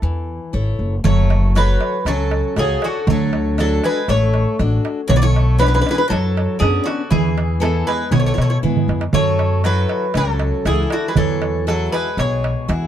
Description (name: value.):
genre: greek folk, Greek bouzouki band.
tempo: 119 BPM.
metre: 4/4.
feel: straight.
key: unclear.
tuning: A4 = 441 Hz.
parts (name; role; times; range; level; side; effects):
Greek bouzouki; melody; 0.0-12.7 s; F#4 to D5; -21 LUFS; right 1 dB; none.
Greek bouzouki; second line; 0.0-12.7 s; C#3 to E4; -26 LUFS; equal; none.
picked steel-string acoustic guitar; accompaniment; 0.0-12.9 s; B2 to C#5; -24 LUFS; left 5 dB; none.
upright bass; bass; 0.0-12.9 s; F#1 to B2; -18 LUFS; equal; none.
darbuka; percussion; 1.0-12.8 s; none; -22 LUFS; right 7 dB; none.
room: light reverb.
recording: dark, warm production.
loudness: -15 LUFS.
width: side -10 dB against mid.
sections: 0.0-1.0 A section; 1.0-12.9 B section.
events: drum fill 8.6-9.1.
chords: 0.0 A; 1.0 F#m; 3.1 D; 5.1 Bmadd9; 7.1 E; 9.1 F#m7; 11.2 Eadd9.